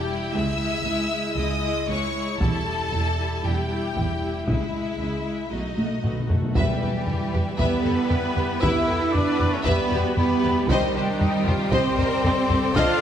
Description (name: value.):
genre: cinematic, epic orchestral film score.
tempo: 116 BPM.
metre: 4/4.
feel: straight.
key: unclear.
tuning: A4 = 441 Hz.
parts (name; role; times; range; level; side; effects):
rich symphonic violin section; melody; 0.0-13.0 s; G4 to E6; -32 LUFS; left 3 dB; none.
warm symphonic violin section; second line; 0.0-13.0 s; D#4 to E5; -30 LUFS; left 2 dB; none.
rich studio viola section; accompaniment; 0.0-13.0 s; G3 to B4; -31 LUFS; equal; none.
mellow French horn section; sustained chords; 0.0-13.0 s; Eb3 to F#4; -31 LUFS; left 4 dB; none.
rich symphonic cello section; bass; 0.0-13.0 s; C#2 to F4; -27 LUFS; right 3 dB; none.
rich symphonic double bass section; bass; 0.0-12.8 s; E1 to E2; -30 LUFS; right 2 dB; none.
taiko ensemble; drums; 2.4-13.0 s; none; -26 LUFS; equal; none.
timpani; percussion; 5.5-7.3 s; E2 to B2; -30 LUFS; left 1 dB; none.
hollow concert flute; second line; 6.5-13.0 s; G5 to F6; -30 LUFS; left 3 dB; none.
bright symphonic string section; sustained chords; 6.5-13.0 s; C4 to G5; -33 LUFS; left 1 dB; none.
room: moderate scoring stage reverb, RT60 1.8 s.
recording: none.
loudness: -21 LUFS.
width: side -9 dB against mid.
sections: 0.0-6.6 A section; 6.6-13.0 B section.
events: timpani fill 5.5-6.6; drum fill 5.8-6.6.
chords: 0.3 C#m; 2.4 Em; 4.5 C#m; 5.5 B7; 6.6 Em; 10.7 Cm.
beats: | 0.35 0.86 1.38 1.90 | 2.42 2.93 3.45 3.97 | 4.48 5.00 5.52 6.04 | 6.55 7.07 7.59 8.11 | 8.62 9.14 9.66 10.17 | 10.69 11.21 11.73 12.24 | 12.76.